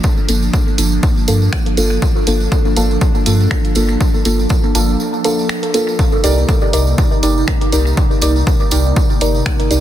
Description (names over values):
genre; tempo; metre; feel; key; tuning
dub techno; 121 BPM; 4/4; swing 56% on 16ths; G minor; A4 = 443 Hz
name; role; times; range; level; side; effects
airy breathy pad; sustained chords; 0.0-9.8 s; C3 to Eb4; -22 LUFS; right 2 dB; chorus, sidechain pumping
electronic kick drum; drums; 0.0-9.6 s; none; -16 LUFS; equal; none
tambourine; percussion; 0.0-9.8 s; none; -26 LUFS; right 5 dB; none
deep mellow chord stab; stabs; 0.3-9.8 s; Bb3 to D5; -18 LUFS; equal; chorus, phaser, sidechain pumping, dub echo
soft dub sub bass; bass; 0.3-9.8 s; G1 to G2; -15 LUFS; equal; sidechain pumping
punchy analog drum machine; drums; 0.3-9.8 s; finger snaps, hi-hat; -24 LUFS; right 1 dB; soft clipping on snare, dub echo
room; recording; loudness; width
light reverb; dense, heavily limited modern master; -12 LUFS; side -12 dB against mid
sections
0.0-9.8 A section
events
filter sweep on synth stab 0.0-9.8; break 5.0-6.0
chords
0.0 Gm7; 6.0 Cm7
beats
| 0.04 0.54 1.03 1.53 | 2.02 2.52 3.02 3.51 | 4.01 4.50 5.00 5.49 | 5.99 6.49 6.98 7.48 | 7.97 8.47 8.96 9.46